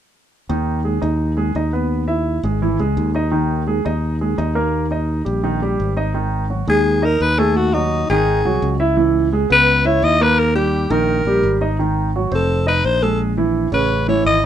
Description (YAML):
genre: jazz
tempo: 170 BPM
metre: 4/4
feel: straight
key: G# minor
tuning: A4 = 440 Hz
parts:
  - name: warm grand piano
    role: accompaniment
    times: 0.5-14.4 s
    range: C#3 to E5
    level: -20 LUFS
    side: right 3 dB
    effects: none
  - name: modern bright fingered electric bass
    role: bass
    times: 0.5-14.5 s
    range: E#1 to D#2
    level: -20 LUFS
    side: left 1 dB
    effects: none
  - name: growling alto saxophone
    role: melody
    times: 6.7-14.5 s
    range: D#4 to D#5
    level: -16 LUFS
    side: left 2 dB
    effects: none
room: light reverb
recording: minimal, uncompressed stereo recording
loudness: -15 LUFS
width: side -10 dB against mid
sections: 0.5-6.2 A section; 6.2-14.5 B section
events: none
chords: 0.5 G#m/D#; 1.9 C#m9 (rootless); 3.3 G#sus2/D#; 4.7 D#; 6.2 G#5; 8.3 G#7; 9.0 C#m9; 10.4 D#; 11.8 G#5; 12.5 F5; 13.2 A#m7b5; 13.9 A